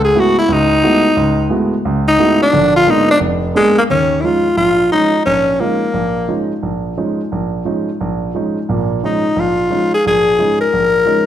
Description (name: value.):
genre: jazz.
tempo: 176 BPM.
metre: 4/4.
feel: swing 62% on 8ths.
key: F# dorian.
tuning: A4 = 441 Hz.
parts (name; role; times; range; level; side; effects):
growling tenor saxophone; melody; 0.0-6.5, 9.1-11.3 s; G#3 to Bb4; -12 LUFS; left 1 dB; none.
warm grand piano; accompaniment; 0.0-11.3 s; E#1 to F#4; -16 LUFS; right 2 dB; none.
room: wet large studio reverb, RT60 1.3 s.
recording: dark, warm production.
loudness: -12 LUFS.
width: side -10 dB against mid.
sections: 0.0-3.9 A section; 3.9-11.3 B section.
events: tenor saxophone solo 0.0-3.9.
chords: 0.0 F#m11; 2.5 A#7b9; 3.9 Eb9sus4.